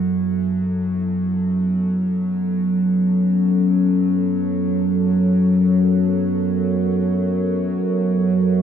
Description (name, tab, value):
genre	dark ambient drone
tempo	free time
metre	none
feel	none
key	F# minor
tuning	A4 = 440 Hz
part	deep dark ambient pad	sustained chords	0.0-8.6 s	F#3 to C#5	-28 LUFS	equal	chorus, built-in reverb
part	overtone-sweeping drone	drone	0.0-8.6 s	F#2 to F#3	-17 LUFS	equal	chorus, built-in reverb
room	moderate plate reverb, RT60 2.8 s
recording	none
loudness	-17 LUFS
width	side -8 dB against mid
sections	0.0-8.6 A section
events	none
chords	0.0 F#m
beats	free time